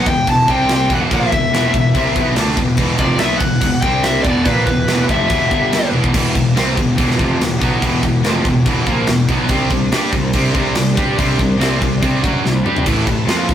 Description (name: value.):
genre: heavy metal.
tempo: 143 BPM.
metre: 4/4.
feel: straight.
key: E minor.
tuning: A4 = 440 Hz.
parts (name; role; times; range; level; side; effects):
dark smooth lead guitar; melody; 0.0-5.9 s; B4 to A5; -18 LUFS; left 2 dB; overdrive.
clear symphonic string section; sustained chords; 0.0-13.5 s; C3 to A5; -27 LUFS; left 1 dB; none.
distorted electric guitar; riff; 0.0-13.5 s; E2 to G4; -24 LUFS; left 1 dB; none.
high-gain distorted guitar; riff; 0.0-13.5 s; E2 to G4; -21 LUFS; right 6 dB; distortion.
scooped high-gain guitar; riff; 0.0-13.5 s; E2 to G4; -21 LUFS; left 5 dB; distortion.
fuzz picked electric bass; bass; 0.0-13.5 s; E1 to G2; -20 LUFS; equal; overdrive.
tight metal drum kit; drums; 0.1-13.5 s; crash cymbal, kick drum, snare drum, toms; -19 LUFS; equal; none.
room: moderate stone room reverb, RT60 1.0 s.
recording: rough rehearsal-room recording, warm saturation.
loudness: -13 LUFS.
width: side -10 dB against mid.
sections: 0.0-6.1 A section; 6.1-13.5 B section.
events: drum fill 5.9, 12.4-12.9.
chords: 0.5 C5; 0.9 Em; 3.8 C5; 4.2 Em; 5.5 G5; 5.9 Em; 9.5 C5; 12.9 A5.